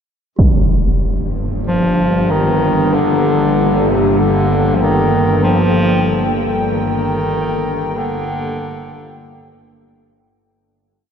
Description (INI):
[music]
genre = dark ambient drone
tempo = 47 BPM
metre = 4/4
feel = straight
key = G minor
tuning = A4 = 440 Hz
[part]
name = dark analog pad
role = sustained chords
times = 1.4-10.6 s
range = Bb3 to G5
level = -22 LUFS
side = equal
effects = chorus
[part]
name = bowed-like drone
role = drone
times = 1.0-10.7 s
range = G1 to G2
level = -17 LUFS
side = left 1 dB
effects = built-in reverb
[part]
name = impact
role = percussion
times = 0.4-0.6 s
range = none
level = -16 LUFS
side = equal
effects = low-pass filter on sfx
[part]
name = bronze singing bowl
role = texture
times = 0.4-10.6 s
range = G4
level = -39 LUFS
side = right 2 dB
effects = none
[part]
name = clear bass clarinet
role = melody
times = 1.7-9.9 s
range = C3 to F3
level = -17 LUFS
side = equal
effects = ping-pong delay
[sound]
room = wet huge ambient reverb, RT60 8.6 s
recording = none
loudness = -13 LUFS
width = side -7 dB against mid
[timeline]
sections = 0.4-10.5 A section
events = fade-in on analog synth pad 0.4-10.5; fade-out 5.4-10.5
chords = 0.4 Gmadd9